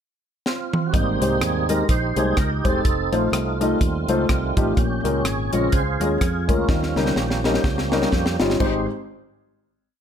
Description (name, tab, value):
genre	uptempo gospel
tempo	125 BPM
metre	4/4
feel	swing 58% on 8ths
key	Ab major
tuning	A4 = 440 Hz
part	tonewheel organ	sustained chords	0.5-8.9 s	C3 to C5	-25 LUFS	right 4 dB	slow rotary speaker, overdrive, chorus vibrato
part	crisp fusion drum kit	drums	0.5-8.7 s	crash cymbal, hi-hat, kick drum, rim click, snare drum, toms	-23 LUFS	equal	none
part	dark grand piano	accompaniment	0.9-8.9 s	Ab1 to Eb5	-23 LUFS	left 3 dB	none
part	fingered electric bass	bass	0.9-8.9 s	Fb1 to F2	-26 LUFS	equal	none
room	light reverb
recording	none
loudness	-19 LUFS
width	side -8 dB against mid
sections	0.0-0.9 pickup bar; 0.9-8.6 breakdown; 8.6-10.0 final chord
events	drum fill 0.5-0.9, 6.7-8.6; tonewheel organ solo 0.9-8.6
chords	0.0 N.C.; 0.9 Abmaj7; 2.9 F7; 4.8 Bbm7; 6.7 Eb7; 8.6 Abmaj7